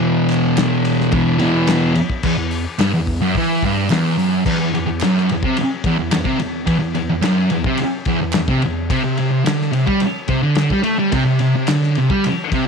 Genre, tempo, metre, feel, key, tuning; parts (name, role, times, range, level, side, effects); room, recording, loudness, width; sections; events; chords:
garage rock duo or trio; 108 BPM; 4/4; straight; E minor; A4 = 440 Hz
thick fuzz guitar; riff; 0.0-12.7 s; E2 to A3; -16 LUFS; equal; distortion
cloth-damped thuddy drum kit; drums; 0.3-12.7 s; crash cymbal, hi-hat, kick drum, ride cymbal, snare drum; -23 LUFS; left 3 dB
group handclap; percussion; 0.3-12.4 s; -32 LUFS; right 12 dB
light reverb, small room ambience; 1960s-style stereo; -15 LUFS; side -5 dB against mid
0.0-2.2 A section; 2.2-4.5 B section; 4.5-12.7 C section
0.0 E5; 2.2 Em; 4.5 Esus2; 8.9 C5